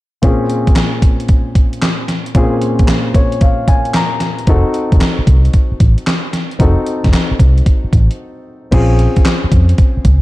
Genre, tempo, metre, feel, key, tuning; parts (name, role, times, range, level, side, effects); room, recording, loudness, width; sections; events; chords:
R&B, new jack swing; 113 BPM; 4/4; swing 67% on 16ths; Bb minor; A4 = 438 Hz
dark grand piano; accompaniment; 0.2-10.2 s; Bb2 to Bb5; -18 LUFS; left 2 dB
gated 80s digital drum machine; drums; 0.2-10.2 s; crash cymbal, handclaps, hi-hat, kick drum, snare drum; -12 LUFS; equal; gated reverb, gated reverb snare, overdrive
vintage muted fingered electric bass; bass; 4.5-10.2 s; F1 to F2; -11 LUFS; equal
digital ambience; dark, warm production; -10 LUFS; side -18 dB against mid
0.2-8.7 A section; 8.7-10.2 B section
grand piano fill 2.9-4.5; break 8.2-8.7
0.2 Bbm9; 4.5 F7b9 (rootless); 8.7 Bbm9